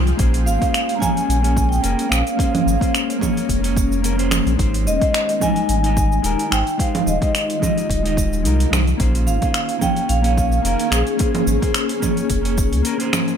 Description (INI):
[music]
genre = sunset chillout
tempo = 109 BPM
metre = 4/4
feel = swing 54% on 16ths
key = unclear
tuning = A4 = 440 Hz
[part]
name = shimmering ambient pad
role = sustained chords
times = 0.0-13.4 s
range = Eb3 to G4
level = -26 LUFS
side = left 2 dB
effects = chorus, built-in reverb
[part]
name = warm sub bass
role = bass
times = 0.0-12.8 s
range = Eb1 to Db2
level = -19 LUFS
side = equal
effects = none
[part]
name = deep house drum kit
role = drums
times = 0.1-13.4 s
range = cabasa, congas, finger snaps, hi-hat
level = -23 LUFS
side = right 2 dB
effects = overdrive
[part]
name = mellow electric guitar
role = accompaniment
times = 0.2-13.4 s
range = G3 to Eb5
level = -24 LUFS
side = equal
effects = auto-pan, tape echo
[part]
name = electronic kick drum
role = drums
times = 0.2-12.7 s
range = none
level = -22 LUFS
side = equal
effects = overdrive
[part]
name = vibraphone with medium mallets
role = melody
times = 0.5-13.1 s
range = Ab4 to Bb5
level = -23 LUFS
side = equal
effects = digital delay
[sound]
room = light reverb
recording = none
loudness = -16 LUFS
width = side -8 dB against mid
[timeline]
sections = 0.0-13.4 A section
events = none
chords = 0.2 Bbm9; 4.6 Abmaj7; 9.0 Bbm9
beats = | 0.19 0.74 1.29 1.84 | 2.39 2.94 3.49 4.04 | 4.59 5.14 5.69 6.24 | 6.79 7.34 7.90 8.45 | 9.00 9.55 10.10 10.65 | 11.20 11.75 12.30 12.85